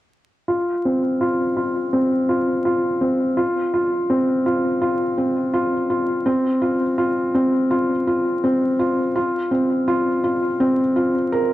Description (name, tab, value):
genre	trip hop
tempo	83 BPM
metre	4/4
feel	swing 56% on 16ths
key	unclear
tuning	A4 = 440 Hz
part	felt-muted upright piano	arpeggios	0.5-11.5 s	C4 to Bb4	-18 LUFS	equal	vintage 12-bit sampler grit, low-pass filter, ping-pong delay
room	wet echo chamber reverb, RT60 2.6 s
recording	vinyl crackle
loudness	-18 LUFS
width	side -15 dB against mid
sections	0.5-11.5 A section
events	filter sweep on felt piano 0.5-11.5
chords	none